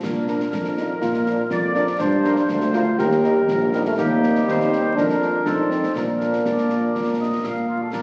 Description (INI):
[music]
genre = military-style march for wind band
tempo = 122 BPM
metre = 2/4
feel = straight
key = Bb major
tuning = A4 = 440 Hz
[part]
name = mellow woodwind section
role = second line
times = 0.0-8.0 s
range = D4 to F5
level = -29 LUFS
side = equal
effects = none
[part]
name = warm euphonium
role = second line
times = 0.0-8.0 s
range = G3 to G4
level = -26 LUFS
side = equal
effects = none
[part]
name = warm tuba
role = bass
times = 0.0-8.0 s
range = Bb1 to Bb2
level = -26 LUFS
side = equal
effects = none
[part]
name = concert snare drum, clash cymbals and concert bass drum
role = drums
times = 0.0-8.0 s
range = none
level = -34 LUFS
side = equal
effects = none
[part]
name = mellow trumpet section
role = melody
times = 0.3-8.0 s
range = F4 to C5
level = -34 LUFS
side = equal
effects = none
[part]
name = mellow French horn section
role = accompaniment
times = 0.3-7.7 s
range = F3 to Eb4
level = -29 LUFS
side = equal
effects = none
[sound]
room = wet concert hall reverb, RT60 2.1 s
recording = very old 78 rpm record, vinyl crackle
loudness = -21 LUFS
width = mono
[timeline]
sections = 0.0-7.9 A section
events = none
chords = 0.0 Bb; 2.0 Gm; 3.0 Eb; 4.0 Cm/Eb; 5.0 Bb/F; 5.5 F7; 6.0 Bb